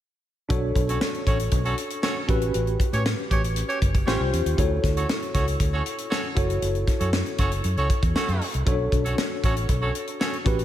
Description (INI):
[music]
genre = polished 1980s jazz-funk pop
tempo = 118 BPM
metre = 4/4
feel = straight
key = B minor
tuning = A4 = 438 Hz
[part]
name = tine electric piano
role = accompaniment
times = 0.5-10.6 s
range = B#3 to C#5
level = -29 LUFS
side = left 1 dB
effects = overdrive, medium stereo tremolo, wide subtle chorus, slapback echo
[part]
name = vintage muted fingered electric bass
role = bass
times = 0.5-10.6 s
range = F#1 to A2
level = -25 LUFS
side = equal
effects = none
[part]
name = tight funk drum kit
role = drums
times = 0.5-10.6 s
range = hi-hat, kick drum, snare drum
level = -25 LUFS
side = equal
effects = none
[part]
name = warm horn section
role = second line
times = 0.9-10.4 s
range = C#4 to C#5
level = -30 LUFS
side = right 2 dB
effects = slapback echo
[sound]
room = moderate lush hall reverb, RT60 2.0 s, small room ambience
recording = big arena sound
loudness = -22 LUFS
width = side -12 dB against mid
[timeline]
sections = 0.5-10.6 A section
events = none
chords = 0.5 Bm9; 2.3 A13; 4.1 A7alt; 4.6 Dmaj9; 6.4 F#m7; 8.7 Bm9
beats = | 0.50 1.01 1.52 2.03 | 2.54 3.05 3.56 4.07 | 4.58 5.09 5.60 6.11 | 6.62 7.13 7.64 8.16 | 8.67 9.18 9.69 10.20